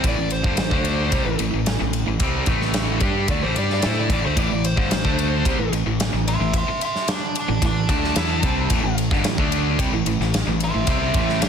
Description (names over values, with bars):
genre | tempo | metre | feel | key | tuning
hard rock | 111 BPM | 4/4 | straight | A minor | A4 = 440 Hz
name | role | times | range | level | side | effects
dark smooth lead guitar | melody | 0.0-11.5 s | C5 to D6 | -26 LUFS | equal | overdrive
cranked stack guitar | riff | 0.0-11.5 s | G2 to A4 | -27 LUFS | right 13 dB | overdrive
tight distorted guitar | riff | 0.0-11.5 s | G2 to A4 | -26 LUFS | left 11 dB | distortion
fuzz fingered electric bass | bass | 0.0-11.5 s | G1 to A2 | -25 LUFS | equal | overdrive
big rock drum kit | drums | 0.0-11.5 s | kick drum, ride cymbal, snare drum | -23 LUFS | equal | none
overdriven semi-hollow guitar | riff | 4.4-11.5 s | G2 to E4 | -28 LUFS | equal | none
room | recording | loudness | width
light reverb, small room ambience | dense, heavily limited modern master | -18 LUFS | side -7 dB against mid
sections
0.0-11.5 A section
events
lead electric guitar solo 0.0-11.5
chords
0.0 Am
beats
| 0.05 0.59 1.13 1.67 | 2.21 2.75 3.29 3.84 | 4.38 4.92 5.46 6.00 | 6.54 7.09 7.63 8.17 | 8.71 9.26 9.80 10.34 | 10.88 11.42